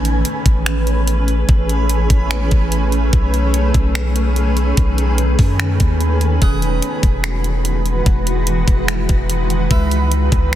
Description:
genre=hip hop, atmospheric cloud-rap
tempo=146 BPM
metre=4/4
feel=half-time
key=A lydian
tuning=A4 = 443 Hz
part: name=granular cloud pad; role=sustained chords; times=0.0-10.6 s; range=D#3 to B4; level=-20 LUFS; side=right 1 dB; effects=built-in reverb, sidechain pumping
part: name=long sustained 808-style bass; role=bass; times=0.0-10.6 s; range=E1 to F#2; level=-17 LUFS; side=equal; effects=none
part: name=trap drum kit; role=drums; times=0.1-10.6 s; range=finger snaps, hi-hat, kick drum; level=-17 LUFS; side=equal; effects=soft clipping on snare
part: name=harpsichord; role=texture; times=6.4-10.6 s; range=G#4 to D#6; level=-29 LUFS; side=right 2 dB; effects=none
room=digital ambience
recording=dense, heavily limited modern master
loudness=-14 LUFS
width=side -12 dB against mid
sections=0.0-10.6 A section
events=none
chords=0.0 Amaj9; 3.1 B13; 6.4 Emaj9; 9.7 C#m9

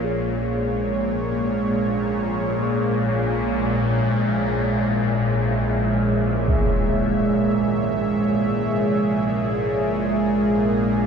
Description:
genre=dark ambient drone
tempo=free time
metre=none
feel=none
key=unclear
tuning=A4 = 440 Hz
part: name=dark analog pad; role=sustained chords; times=0.0-11.1 s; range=Ab3 to Fb5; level=-22 LUFS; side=right 2 dB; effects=chorus
part: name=bowed-like drone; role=drone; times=0.0-11.1 s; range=Bb1 to Bb2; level=-22 LUFS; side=left 1 dB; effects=built-in reverb, phaser
part: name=bronze singing bowl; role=texture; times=0.0-11.1 s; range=Ab4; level=-35 LUFS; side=left 4 dB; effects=none
part: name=impact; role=percussion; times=6.5-6.7 s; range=none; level=-26 LUFS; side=equal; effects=low-pass filter on sfx
part: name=gamelan-type bronze metallophone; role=arpeggios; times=7.7-11.1 s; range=C3 to Eb3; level=-36 LUFS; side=left 2 dB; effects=none
room=wet huge ambient reverb, RT60 7.7 s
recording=dark, warm production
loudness=-19 LUFS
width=side -6 dB against mid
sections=0.0-11.1 A section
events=none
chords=0.0 Dbm

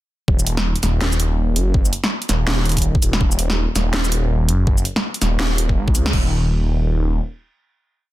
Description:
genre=half-time drum and bass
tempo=164 BPM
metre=4/4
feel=swing 60% on 16ths, half-time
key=Eb minor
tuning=A4 = 440 Hz
part: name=phased detuned saw bass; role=bass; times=0.3-7.2 s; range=Eb1 to Db2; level=-18 LUFS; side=equal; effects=phaser
part: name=drum and bass drum kit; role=drums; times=0.3-6.2 s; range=crash cymbal, kick drum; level=-19 LUFS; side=equal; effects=overdrive
part: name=drum and bass drum kit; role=drums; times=0.4-6.1 s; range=hi-hat, shaker, snare drum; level=-21 LUFS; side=equal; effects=overdrive
room=little or no reverb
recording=dense, heavily limited modern master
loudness=-16 LUFS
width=side -16 dB against mid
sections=0.3-6.1 drop; 6.1-8.1 final note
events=drop 0.3-6.1; band accent 6.0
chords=none

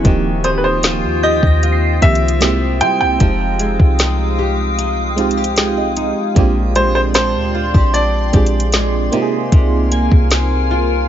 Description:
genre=contemporary R&B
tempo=76 BPM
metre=4/4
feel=straight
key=Eb major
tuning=A4 = 439 Hz
part: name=FM electric piano with tremolo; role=accompaniment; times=0.0-11.1 s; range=Eb3 to G5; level=-20 LUFS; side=right 6 dB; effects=none
part: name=glassy FM pad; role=sustained chords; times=0.0-11.1 s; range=Ab3 to Eb6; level=-22 LUFS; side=left 3 dB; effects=ensemble chorus, built-in reverb
part: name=flamenco guitar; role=arpeggios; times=0.0-11.1 s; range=Bb2 to G4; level=-24 LUFS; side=left 3 dB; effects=digital delay
part: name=clean 808-style bass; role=bass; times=0.0-11.1 s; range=Eb1 to G3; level=-17 LUFS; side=equal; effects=none
part: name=smooth R&B drum kit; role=drums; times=0.0-10.5 s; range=hi-hat, kick drum, snare drum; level=-14 LUFS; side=equal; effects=none
part: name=soft synth bell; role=texture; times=0.0-10.9 s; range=G5 to C7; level=-29 LUFS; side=equal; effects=chorus, phaser, digital delay
part: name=clear grand piano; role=melody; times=0.4-11.1 s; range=Cb5 to G5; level=-18 LUFS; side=right 1 dB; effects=digital delay
room=little or no reverb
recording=nothing above 7.6 kHz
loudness=-12 LUFS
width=side -10 dB against mid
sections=0.0-11.1 A section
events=FM electric piano fill 5.2-6.4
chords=0.0 Eb69; 2.4 C7b13; 3.2 Fm9; 6.4 Bb13; 9.1 Ab69/C

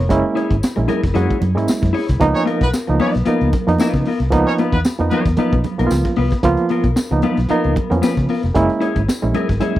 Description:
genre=funk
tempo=114 BPM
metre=4/4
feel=swing 56% on 16ths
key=Db mixolydian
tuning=A4 = 435 Hz
part: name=barky reed electric piano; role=stabs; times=0.0-9.8 s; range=Eb3 to Db5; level=-18 LUFS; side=right 3 dB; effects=overdrive, fast tremolo
part: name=vintage muted fingered electric bass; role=bass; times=0.0-9.8 s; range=Fb1 to Db3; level=-19 LUFS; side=equal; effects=none
part: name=crunchy breakbeat drum kit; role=drums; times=0.1-9.8 s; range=hi-hat, kick drum, snare drum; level=-20 LUFS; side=equal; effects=none
part: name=congas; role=percussion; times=0.1-9.8 s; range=none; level=-28 LUFS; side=right 6 dB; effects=none
part: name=mellow electric guitar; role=accompaniment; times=0.4-9.8 s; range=Cb4 to Db5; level=-22 LUFS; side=left 6 dB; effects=spring reverb
part: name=tambourine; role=percussion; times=0.6-9.2 s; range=none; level=-33 LUFS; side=left 3 dB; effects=none
part: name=warm horn section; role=second line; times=2.3-5.2 s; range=Cb4 to Db5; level=-23 LUFS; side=equal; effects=none
room=little or no reverb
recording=dry, close 1970s-style studio recording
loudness=-15 LUFS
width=side -14 dB against mid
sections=0.0-9.8 A section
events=none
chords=0.1 Gb9; 2.2 Db13; 8.6 Gb9 (rootless)

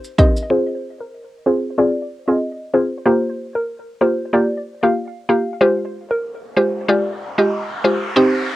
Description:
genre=dancehall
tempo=94 BPM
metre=4/4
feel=swing 56% on 16ths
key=unclear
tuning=A4 = 440 Hz
part: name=maracas and timbales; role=percussion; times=0.0-0.5 s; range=none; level=-30 LUFS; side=right 3 dB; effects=none
part: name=hollow square pluck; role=melody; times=0.2-8.3 s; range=Bb4 to F5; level=-22 LUFS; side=equal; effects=chorus, low-pass filter, cassette tape, tape echo
part: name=mallet-like synth pluck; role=accompaniment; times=0.2-8.6 s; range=Ab3 to Ab4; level=-17 LUFS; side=equal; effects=chorus, low-pass filter, cassette tape
part: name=riser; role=sound effects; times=6.3-8.6 s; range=none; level=-28 LUFS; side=equal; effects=none
room=moderate booth ambience, RT60 0.2 s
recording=home recording on cassette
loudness=-16 LUFS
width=side -16 dB against mid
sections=0.5-8.6 A section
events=filter sweep 0.5-8.6; riser 6.3-8.6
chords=0.0 Cm; 0.5 Ab6; 3.1 Gm7; 5.6 Fmadd9

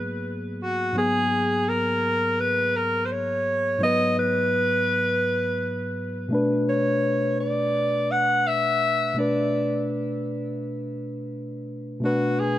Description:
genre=R&B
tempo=84 BPM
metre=4/4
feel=swing 58% on 16ths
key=unclear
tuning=A4 = 437 Hz
part: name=breathy alto saxophone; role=melody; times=0.0-12.6 s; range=Gb4 to F#5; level=-23 LUFS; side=equal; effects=tape echo
part: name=mellow tine electric piano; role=accompaniment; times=0.0-12.6 s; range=Ab2 to Cb5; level=-26 LUFS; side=equal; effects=none
room=light reverb, small room reverb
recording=none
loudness=-21 LUFS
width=side -13 dB against mid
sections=0.0-12.6 A section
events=none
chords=0.0 Abm9; 6.3 Bm7

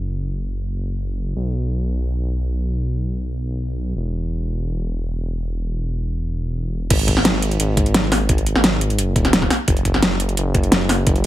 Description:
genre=liquid drum and bass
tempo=173 BPM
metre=4/4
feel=straight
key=unclear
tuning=A4 = 440 Hz
part: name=dark detuned saw bass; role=bass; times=0.0-11.3 s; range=D#1 to B1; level=-21 LUFS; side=equal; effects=none
part: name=electronic kick drum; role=drums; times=6.9-11.1 s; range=none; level=-19 LUFS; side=equal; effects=none
part: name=pop drum kit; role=drums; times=6.9-11.3 s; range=crash cymbal, hi-hat, snare drum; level=-18 LUFS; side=equal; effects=overdrive, low-pass filter on hats, low-pass filter on cymbals, low-pass filter on snare, low-pass filter on room
room=little or no reverb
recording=none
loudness=-18 LUFS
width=side -14 dB against mid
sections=0.0-6.9 A section; 6.9-11.3 B section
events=drop 6.9-11.3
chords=none

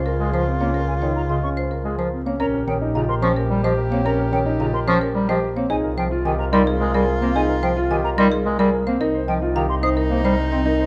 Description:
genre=classical, minimalist pattern music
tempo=109 BPM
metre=3/4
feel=straight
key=Bb dorian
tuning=A4 = 440 Hz
part: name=marimba with medium hard mallets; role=melody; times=0.0-10.8 s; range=Ab4 to F5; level=-28 LUFS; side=equal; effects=none
part: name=bright soprano saxophone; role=second line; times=0.0-10.9 s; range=Eb4 to G4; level=-31 LUFS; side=equal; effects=none
part: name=clear double bass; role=bass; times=0.0-10.9 s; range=Bb1 to Db2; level=-27 LUFS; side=equal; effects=none
part: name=warm grand piano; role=arpeggios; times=0.1-10.9 s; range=C4 to C5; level=-27 LUFS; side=equal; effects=none
part: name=clear bass clarinet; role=accompaniment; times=0.2-10.6 s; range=Db3 to C4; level=-25 LUFS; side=equal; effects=none
part: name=hollow concert flute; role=arpeggios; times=0.9-9.9 s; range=Eb5 to Eb6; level=-30 LUFS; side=equal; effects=none
room=moderate large studio reverb, RT60 1.2 s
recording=dark, warm production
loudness=-20 LUFS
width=mono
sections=0.0-2.4 A section; 2.4-10.9 B section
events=none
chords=0.0 Dbmaj7; 2.4 Bbm69; 5.7 Ab69/C; 9.0 Cm7

